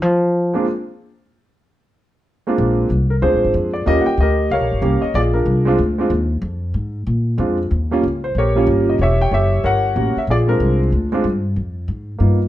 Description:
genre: jazz piano trio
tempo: 187 BPM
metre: 4/4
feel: swing 62% on 8ths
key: Bb mixolydian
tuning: A4 = 440 Hz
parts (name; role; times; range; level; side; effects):
- upright bass; bass; 0.0-0.5, 2.6-12.5 s; E1 to F3; -18 LUFS; equal; none
- warm concert grand piano; melody; 0.5-12.4 s; G3 to G5; -17 LUFS; right 1 dB; none
room: moderate large studio reverb, RT60 0.8 s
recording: dark, warm production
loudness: -15 LUFS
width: side -14 dB against mid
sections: 0.0-2.6 A section; 2.6-12.5 B section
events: upright bass solo 0.0-2.6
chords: 0.0 N.C.; 1.3 Bb7; 3.9 Eb7; 5.1 Bb7; 6.4 Fm; 7.1 Bb7; 7.7 Eb7; 9.0 Edim7; 10.3 Bb7; 11.6 Fm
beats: | 0.01 0.33 0.65 0.97 | 1.29 1.61 1.93 2.25 | 2.57 2.89 3.21 3.54 | 3.86 4.18 4.50 4.82 | 5.14 5.46 5.78 6.10 | 6.42 6.74 7.07 7.39 | 7.71 8.03 8.35 8.67 | 8.99 9.31 9.63 9.95 | 10.28 10.60 10.92 11.24 | 11.56 11.88 12.20

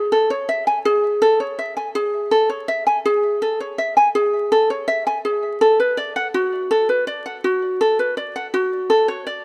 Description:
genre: folktronica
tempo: 82 BPM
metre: 4/4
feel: straight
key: A major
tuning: A4 = 440 Hz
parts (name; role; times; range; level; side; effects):
- ukulele; solo; 0.0-9.4 s; F#4 to G#5; -19 LUFS; equal; tape echo
room: light reverb, small room ambience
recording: rough home demo mix, vinyl crackle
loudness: -19 LUFS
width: mono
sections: 0.0-9.4 A section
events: none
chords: none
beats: 0.49 1.22 1.96 | 2.69 3.42 4.15 4.88 | 5.62 6.35 7.08 7.81 | 8.54 9.27

